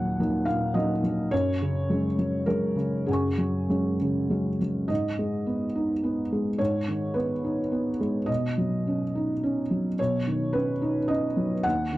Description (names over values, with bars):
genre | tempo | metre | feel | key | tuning
neoclassical minimalist piano | 106 BPM | 3/4 | rubato | unclear | A4 = 439 Hz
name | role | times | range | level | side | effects
felt-muted upright piano | solo | 0.0-12.0 s | Eb2 to Db6 | -24 LUFS | equal | none
room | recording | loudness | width
light reverb | dry, close 1970s-style studio recording | -24 LUFS | side -17 dB against mid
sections
0.0-4.9 A section; 4.9-12.0 B section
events
none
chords
0.0 Ebm; 1.3 Gbsus2; 4.9 Abm; 8.3 Badd9